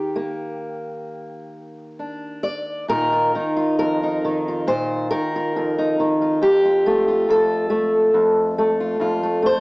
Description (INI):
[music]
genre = folk, solo fingerstyle acoustic guitar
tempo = 69 BPM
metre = 4/4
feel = rubato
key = unclear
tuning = A4 = 440 Hz
[part]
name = fingerpicked steel-string acoustic guitar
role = solo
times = 0.0-9.6 s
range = F2 to D5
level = -18 LUFS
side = equal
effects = cassette tape
[sound]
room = wet spring reverb, RT60 1.6 s, small room ambience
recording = home recording on cassette, small speaker sound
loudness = -17 LUFS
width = side -26 dB against mid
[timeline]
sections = 0.0-2.9 A section; 2.9-9.6 B section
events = none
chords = 0.0 Ebmaj7; 2.9 Bbsus4; 6.4 F